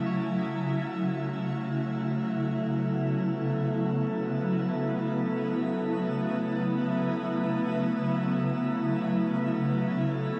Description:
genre	ambient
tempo	free time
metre	none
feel	none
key	A major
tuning	A4 = 440 Hz
part	granular cloud pad	sustained chords	0.0-10.4 s	C#3 to E4	-30 LUFS	equal	built-in reverb
part	analog drone	drone	0.0-10.4 s	A3	-35 LUFS	equal	chorus
part	electric guitar at the edge of break-up	arpeggios	0.1-0.9 s	C#5	-53 LUFS	equal	none
room	wet shimmer reverb, RT60 6.9 s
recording	none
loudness	-29 LUFS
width	mono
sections	0.5-10.4 A section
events	none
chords	0.0 A6; 0.5 Aadd9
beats	free time

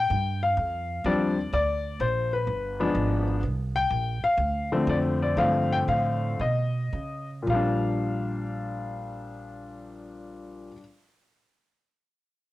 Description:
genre	jazz piano trio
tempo	107-126 BPM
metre	4/4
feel	swing 68% on 8ths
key	Bb major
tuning	A4 = 438 Hz
part	warm concert grand piano	melody	0.0-10.8 s	Bb2 to G5	-26 LUFS	left 2 dB	none
part	upright bass	bass	0.0-10.7 s	G1 to C#3	-30 LUFS	right 2 dB	none
room	light reverb, small room ambience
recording	home recording on cassette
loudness	-24 LUFS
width	side -16 dB against mid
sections	0.0-3.4 A section; 3.4-7.5 B section; 7.5-12.0 C section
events	slowing down 3.4-7.5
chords	0.0 Bb6; 2.5 G7b9; 3.4 C5; 4.4 Dm7; 5.4 G9sus4; 6.4 Badd9; 7.5 Bb6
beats	0.10 0.58 1.05 | 1.53 2.00 2.48 2.95 | 3.43 3.91 4.39 4.88 | 5.37 5.88 6.40 6.93 | 7.48 8.04 8.60 9.16 | 9.72 10.28

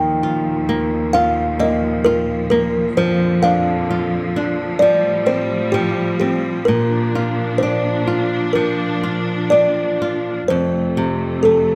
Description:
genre	children's music, lullaby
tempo	65 BPM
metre	4/4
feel	rubato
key	Bb major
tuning	A4 = 441 Hz
part	kalimba	melody	0.0-11.8 s	G4 to G5	-21 LUFS	equal	none
part	flamenco guitar	accompaniment	0.0-11.8 s	F2 to F4	-22 LUFS	equal	none
part	clear symphonic string section	sustained chords	0.0-11.8 s	Eb2 to D4	-25 LUFS	equal	none
room	light reverb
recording	close, detailed microphones, faint mains hum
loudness	-18 LUFS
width	mono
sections	0.0-10.5 A section; 10.5-11.8 B section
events	none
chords	0.0 Ebsus2; 3.0 Bb/F; 4.8 Fadd9; 6.7 Bb; 10.5 F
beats	0.24 1.16 2.07 | 2.98 3.90 4.82 5.74 | 6.67 7.61 8.55 9.52 | 10.50 11.45

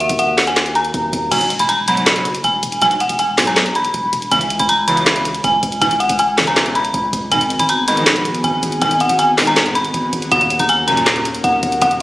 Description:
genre	hip hop, trap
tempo	160 BPM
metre	4/4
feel	half-time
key	unclear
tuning	A4 = 438 Hz
part	dark detuned synth bell	melody	0.0-12.0 s	E5 to B5	-15 LUFS	equal	chorus, phaser, digital delay
part	mellow tine electric piano	accompaniment	0.0-1.3 s	D#3 to A#4	-26 LUFS	equal	none
part	distorted 808-style bass	bass	0.0-12.0 s	E1 to D#2	-26 LUFS	equal	distortion
part	trap drum kit	drums	0.0-12.0 s	crash cymbal, handclaps, hi-hat, snare drum	-18 LUFS	equal	none
part	big bright polysynth	stabs	1.3-11.9 s	F#2 to F#3	-23 LUFS	right 1 dB	chorus, phaser
part	airy breathy pad	sustained chords	7.3-12.0 s	D#3 to A#4	-24 LUFS	equal	chorus
room	little or no reverb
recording	recorded on a phone in the room, studio reverb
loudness	-13 LUFS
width	side -17 dB against mid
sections	0.0-1.3 A section; 1.3-12.0 B section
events	none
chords	0.0 D#m7; 1.3 Eadd9; 4.3 C#m7; 7.3 G#m7; 10.3 D#m7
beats	0.19 0.57 0.94 | 1.32 1.69 2.07 2.44 | 2.82 3.19 3.57 3.94 | 4.32 4.69 5.07 5.44 | 5.82 6.19 6.57 6.94 | 7.32 7.69 8.07 8.44 | 8.82 9.19 9.57 9.94 | 10.32 10.69 11.07 11.44 | 11.82

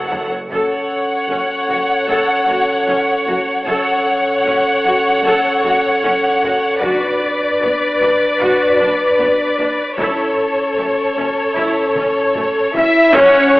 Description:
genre	cinematic, epic orchestral film score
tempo	76 BPM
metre	4/4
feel	straight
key	F# minor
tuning	A4 = 441 Hz
part	warm symphonic violin section	melody	0.0-13.6 s	C#5 to F#5	-18 LUFS	left 1 dB	none
part	rich symphonic violin section	second line	0.0-13.6 s	A4 to E5	-20 LUFS	left 1 dB	none
part	clear symphonic viola section	accompaniment	0.0-13.6 s	A3 to F#5	-21 LUFS	equal	none
part	rich studio double bass section	bass	0.0-13.6 s	F#1	-34 LUFS	right 1 dB	none
part	warm symphonic cello section	bass	0.0-13.6 s	F#2	-32 LUFS	equal	none
part	taiko ensemble	drums	0.1-2.0, 6.8-13.6 s	none	-31 LUFS	equal	none
part	mellow French horn section	sustained chords	0.5-13.6 s	C#4 to B4	-18 LUFS	equal	none
part	timpani	percussion	6.8-8.0 s	F#2	-40 LUFS	equal	none
part	reverse cymbal and impact	sound effects	12.7-13.6 s	none	-36 LUFS	equal	none
part	mellow silver concert flute	second line	12.7-13.6 s	C#5 to E5	-16 LUFS	equal	none
part	dark trumpet section	stabs	12.8-13.6 s	C#5 to E5	-15 LUFS	equal	none
part	clash cymbals and concert bass drum	percussion	13.1-13.6 s	none	-28 LUFS	left 1 dB	none
room	moderate scoring stage reverb, RT60 1.7 s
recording	telephone sound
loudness	-13 LUFS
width	side -19 dB against mid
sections	0.5-13.1 A section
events	drum fill 0.0-0.5, 12.0-13.1; band accent 13.1-13.6; impact 13.1-13.6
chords	0.0 F#m; 6.8 Bm/F#; 10.0 A/F#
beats	| 0.51 1.30 2.09 2.88 | 3.67 4.46 5.25 6.04 | 6.83 7.62 8.41 9.20 | 9.99 10.78 11.56 12.35 | 13.14

